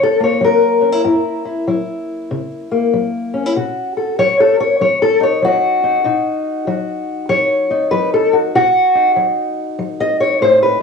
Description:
acoustic country blues, solo or duo; 96 BPM; 4/4; swing 64% on 8ths; A4 = 439 Hz
fingerpicked old ladder-braced acoustic guitar; solo; 0.0-10.8 s; F#2 to D#5; -13 LUFS; left 2 dB; cassette tape
moderate spring reverb, RT60 1.4 s, small room ambience; home recording on cassette, studio ambience; -13 LUFS; side -5 dB against mid
0.0-10.8 A section
steel-string acoustic guitar solo 0.0-10.8
0.0 F#7; 3.6 B7
0.42 | 1.05 1.67 2.30 2.92 | 3.55 4.18 4.80 5.43 | 6.05 6.67 7.30 7.92 | 8.54 9.17 9.79 10.41

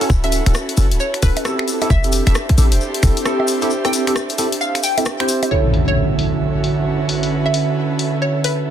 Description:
UK garage, two-step garage; 133 BPM; 4/4; swing 62% on 16ths; D major; A4 = 440 Hz
dark studio violin section; sustained chords; 0.0-8.7 s; C4 to A4; -30 LUFS; right 2 dB; sidechain pumping
barky tine electric piano; stabs; 0.0-8.7 s; D3 to C5; -22 LUFS; right 1 dB; ensemble chorus, digital delay
punchy analog drum machine; drums; 0.0-8.6 s; bongos, finger snaps, hi-hat, rim click; -23 LUFS; left 1 dB; overdrive, low-pass filter on hats, soft clipping on snare, low-pass filter on snare, low-pass filter on perc
tube shaker; percussion; 0.0-5.5 s; -28 LUFS; left 6 dB
airy breathy pad; texture; 0.0-8.7 s; D3 to E5; -23 LUFS; right 3 dB; chorus, sidechain pumping
short 808-style bass; bass; 0.1-3.1 s; D1 to A1; -15 LUFS; equal; sidechain pumping
electronic kick drum; drums; 0.1-3.1 s; -15 LUFS; equal
hollow square pluck; melody; 0.2-8.7 s; B4 to G5; -24 LUFS; equal; analog chorus, digital delay
impact; sound effects; 5.5-7.3 s; -20 LUFS; equal
light reverb; dense, heavily limited modern master; -15 LUFS; side -10 dB against mid
0.0-5.5 A section; 5.5-8.7 B section
break 3.7-5.5; impact 5.5-7.3
0.0 Dmaj9; 1.7 Fmaj9; 5.5 Dmaj9
| 0.10 0.55 1.00 1.45 | 1.90 2.35 2.81 3.26 | 3.71 4.16 4.61 5.06 | 5.51 5.96 6.41 6.87 | 7.32 7.77 8.22 8.67

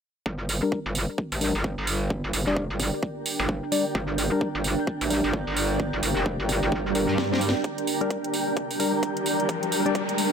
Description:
bass house; 130 BPM; 4/4; swing 60% on 16ths; G minor; A4 = 440 Hz
metallic wobble bass; bass; 0.3-7.5 s; F1 to G2; -27 LUFS; equal; chorus, sidechain pumping
electronic kick drum; drums; 0.3-10.1 s; -31 LUFS; equal; overdrive, high-pass filter on kick
granular cloud pad; texture; 1.8-10.3 s; D4 to G5; -29 LUFS; right 2 dB; built-in reverb, sidechain pumping
house drum kit; drums; 0.5-10.3 s; hi-hat, snare drum; -30 LUFS; right 2 dB
percussive organ stab; stabs; 0.6-10.0 s; G3 to D5; -30 LUFS; left 4 dB; chorus, sidechain pumping, digital delay
swell and riser; sound effects; 6.8-10.3 s; -32 LUFS; right 2 dB
warm studio string section; sustained chords; 7.6-10.3 s; G3 to Bb4; -30 LUFS; left 2 dB; sidechain pumping, low-pass filter
light reverb; -23 LUFS; side -6 dB against mid
0.3-7.6 A section; 7.6-10.3 B section
swell 6.8-7.6; drum fill 7.2-7.6; build-up 7.6-10.3; riser 7.6-10.3; filter sweep on string section 7.6-10.3
0.3 Gm
| 0.26 0.72 1.18 1.64 | 2.10 2.57 3.03 3.49 | 3.95 4.41 4.87 5.33 | 5.80 6.26 6.72 7.18 | 7.64 8.10 8.57 9.03 | 9.49 9.95

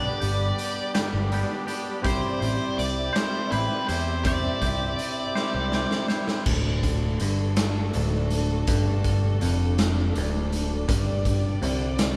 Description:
psychedelic rock; 54 BPM (dotted quarters); 6/8; straight; D mixolydian; A4 = 440 Hz
octave-fuzz lead guitar; melody; 0.0-6.1 s; B4 to D5; -33 LUFS; equal; distortion
warm symphonic string section; sustained chords; 0.0-12.2 s; D3 to B5; -36 LUFS; equal
twangy electric guitar; riff; 0.0-12.2 s; D2 to C5; -32 LUFS; equal
picked electric bass; bass; 0.0-12.2 s; D1 to E2; -29 LUFS; equal
raw garage drum kit; drums; 0.2-12.2 s; crash cymbal, hi-hat, kick drum, snare drum; -31 LUFS; equal
light reverb; band playing live in one room; -25 LUFS; mono
0.0-6.5 A section; 6.5-12.2 B section
drum fill 5.4-6.5
0.0 G; 2.0 Cadd9; 6.5 D; 10.9 G5
0.94 | 2.05 3.15 | 4.26 5.36 | 6.46 7.57 | 8.67 9.77 | 10.88 11.98

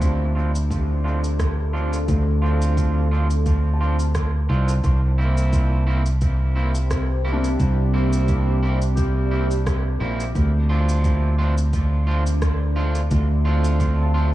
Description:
ambient dub; 87 BPM; 4/4; swing 55% on 16ths; D minor; A4 = 439 Hz
deep dark ambient pad; sustained chords; 0.3-14.3 s; C4 to F5; -30 LUFS; left 1 dB; chorus, built-in reverb
felt-muted upright piano; arpeggios; 0.0-14.3 s; D4 to A5; -35 LUFS; left 2 dB; low-pass filter, dub echo
electric guitar at the edge of break-up; stabs; 0.0-14.3 s; Bb3 to F4; -29 LUFS; right 2 dB; low-pass filter, dub echo
fingered electric bass; bass; 0.0-14.3 s; Bb1 to D2; -19 LUFS; equal
electronic kick drum; drums; 0.0-14.0 s; -24 LUFS; equal
electronic shaker and rim click; drums; 0.0-14.0 s; -35 LUFS; right 1 dB; dub echo
little or no reverb; echo-heavy mix, small room ambience; -18 LUFS; side -15 dB against mid
0.0-14.3 A section
filter sweep on felt piano 0.0-14.3
0.0 Dm7; 4.8 C7; 10.4 Dm7
0.01 0.70 1.39 | 2.08 2.77 3.46 4.15 | 4.84 5.53 6.21 6.91 | 7.59 8.28 8.97 9.66 | 10.35 11.04 11.73 12.42 | 13.11 13.80

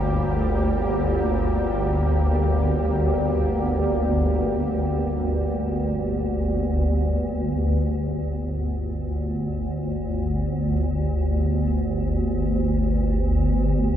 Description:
dark ambient drone; free time; G minor; A4 = 442 Hz
sweeping resonant pad; sustained chords; 0.0-7.4 s; D3 to G4; -29 LUFS; equal; chorus
swarming drone; drone; 0.0-14.0 s; G1 to D2; -21 LUFS; equal; built-in reverb
wet huge ambient reverb, RT60 7.8 s; in a vast, echoing space; -21 LUFS; side -10 dB against mid
0.0-7.4 A section; 7.4-14.0 B section
0.0 Gm; 7.4 G5
free time

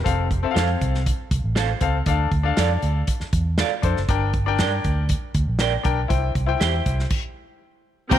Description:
uptempo 1960s-style soul; 119 BPM; 4/4; straight; A4 = 441 Hz
bright grand piano; accompaniment; 0.0-8.2 s; Bb3 to G5; -26 LUFS; left 9 dB
vintage muted fingered electric bass; bass; 0.0-8.2 s; F1 to G2; -22 LUFS; right 1 dB
natural country drum kit; drums; 0.1-8.2 s; crash cymbal, hi-hat, kick drum, snare drum; -25 LUFS; equal
electric guitar through a small old amp; stabs; 0.5-6.7 s; D4 to G5; -28 LUFS; right 11 dB; spring reverb
rich studio string section; second line; 8.1-8.2 s; C4 to G5; -19 LUFS; right 1 dB
overdriven tonewheel organ; sustained chords; 8.1-8.2 s; F3 to G4; -25 LUFS; right 5 dB; slow rotary speaker, chorus vibrato
light reverb, small room reverb; 1960s-style stereo with parts hard left and right; -19 LUFS; side -11 dB against mid
0.0-8.1 A section
stop 7.1-8.1
0.1 F; 2.1 Dm; 4.1 Gm; 6.1 C
| 0.05 0.56 1.06 1.56 | 2.07 2.57 3.08 3.58 | 4.08 4.59 5.09 5.60 | 6.10 6.60 7.11 7.61 | 8.12

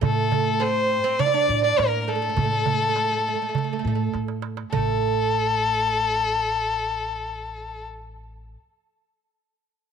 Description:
Arabic maqam ensemble; 102 BPM; 4/4; straight; A maqam kurd; A4 = 440 Hz
clear violin; melody; 0.0-7.8 s; A4 to D5; -23 LUFS; left 4 dB
oud; second line; 0.0-8.5 s; A3 to E4; -26 LUFS; right 14 dB
upright bass; bass; 0.0-8.5 s; A1 to A2; -29 LUFS; left 1 dB
darbuka; percussion; 0.0-5.0 s; -28 LUFS; right 8 dB
light reverb; 1960s-style stereo; -20 LUFS; side -7 dB against mid
0.0-4.7 A section; 4.7-7.1 B section
drum fill 4.1-4.7
| 0.02 0.61 1.20 1.78 | 2.37 2.96 3.55 4.13 | 4.72 5.31 5.90 6.49

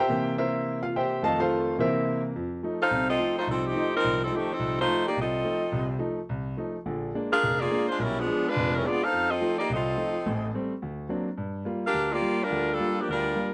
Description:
jazz; 212 BPM; 4/4; swing 60% on 8ths; F major; A4 = 440 Hz
clear grand piano; accompaniment; 0.0-13.5 s; F1 to A5; -31 LUFS; equal
bright saxophone section; melody; 2.8-13.5 s; Eb3 to F5; -28 LUFS; equal
light reverb; worn, warbling old tape, cassette tape, warbly pitch drift; -27 LUFS; mono
0.0-2.3 A section; 2.3-13.5 B section
grand piano solo 0.0-2.3
0.1 C7; 1.2 F7; 1.8 C7; 2.3 F7; 6.9 Bb7; 8.0 Bdim7; 9.1 F7; 10.2 Am7; 10.8 Daug7; 11.4 Gm7
| 0.07 0.36 0.64 0.92 | 1.20 1.49 1.77 2.05 | 2.33 2.62 2.90 3.18 | 3.46 3.75 4.03 4.31 | 4.59 4.88 5.16 5.44 | 5.72 6.00 6.29 6.57 | 6.85 7.13 7.42 7.70 | 7.98 8.27 8.55 8.83 | 9.11 9.40 9.68 9.96 | 10.25 10.53 10.81 11.10 | 11.38 11.66 11.94 12.23 | 12.51 12.79 13.08 13.36

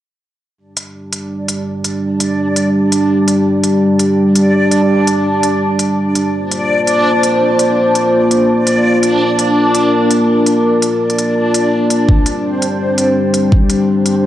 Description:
half-time drum and bass; 167 BPM; 4/4; half-time; G minor; A4 = 440 Hz
dark analog pad; sustained chords; 1.1-14.3 s; G3 to C5; -13 LUFS; equal; chorus, sidechain pumping, cassette tape
backwards swelling texture; texture; 1.4-14.3 s; C4 to D5; -16 LUFS; equal; built-in reverb, cassette tape
electronic hi-hat; drums; 0.8-14.1 s; -21 LUFS; equal; overdrive, cassette tape
electronic kick drum; drums; 12.1-13.6 s; -10 LUFS; equal; cassette tape
moderate spring reverb, RT60 1.2 s; home recording on cassette; -11 LUFS; side -12 dB against mid
0.6-14.3 A section
0.6 G5; 6.3 Bb; 12.1 G5
| 0.59 0.95 1.31 1.67 | 2.02 2.38 2.74 3.10 | 3.46 3.82 4.18 4.54 | 4.90 5.26 5.62 5.98 | 6.34 6.70 7.05 7.41 | 7.77 8.13 8.49 8.85 | 9.21 9.57 9.93 10.29 | 10.65 11.01 11.37 11.72 | 12.09 12.44 12.80 13.16 | 13.52 13.88 14.24

